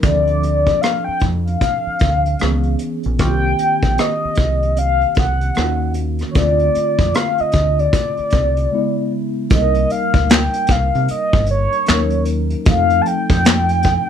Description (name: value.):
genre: R&B, neo-soul.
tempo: 76 BPM.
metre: 4/4.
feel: swing 61% on 16ths.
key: C dorian.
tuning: A4 = 440 Hz.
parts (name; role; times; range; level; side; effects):
mellow horn-like synth lead; melody; 0.0-14.1 s; Db5 to A5; -18 LUFS; left 2 dB; chorus.
mellow tine electric piano; accompaniment; 0.0-14.1 s; C3 to Bb4; -23 LUFS; right 1 dB; medium stereo tremolo.
deep dub fingered electric bass; bass; 0.0-14.0 s; G1 to C3; -19 LUFS; equal; none.
vintage brush drum kit; drums; 0.0-14.1 s; handclaps, hi-hat, kick drum, rim click, snare drum; -17 LUFS; equal; none.
room: light reverb.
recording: band playing live in one room.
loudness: -14 LUFS.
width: side -8 dB against mid.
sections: 0.0-9.5 A section; 9.5-14.1 B section.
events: break 8.7-9.5.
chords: 0.0 Dm7; 2.4 Dbm7; 3.2 Cm7; 5.6 Ebm7; 6.4 Dm7; 8.7 Dbm7; 9.5 Cm7; 11.9 Ebm7; 12.7 F7.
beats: | 0.04 0.82 1.61 2.40 | 3.19 3.98 4.77 5.56 | 6.35 7.14 7.93 8.72 | 9.51 10.30 11.09 11.88 | 12.67 13.46.